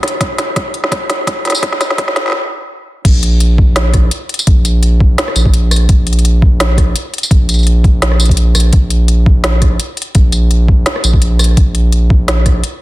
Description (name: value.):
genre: half-time drum and bass.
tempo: 169 BPM.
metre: 4/4.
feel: swing 54% on 16ths, half-time.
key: unclear.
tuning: A4 = 440 Hz.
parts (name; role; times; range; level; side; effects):
saturated sub bass; bass; 0.0-12.6 s; Bb1 to Db2; -11 LUFS; equal; high-pass filter.
organic electronic drum kit; drums; 0.0-12.7 s; crash cymbal, hi-hat, rim click, snare drum, tambourine; -16 LUFS; equal; none.
electronic kick drum; drums; 0.2-12.5 s; none; -11 LUFS; equal; overdrive.
room: little or no reverb.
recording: dense, heavily limited modern master, high-pass filter.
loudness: -9 LUFS.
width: side -18 dB against mid.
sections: 0.0-3.0 A section; 3.0-12.8 B section.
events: build-up 0.0-3.0; drum fill 0.0-2.3; stop 2.3-3.0; drop 3.0-12.8.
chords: none.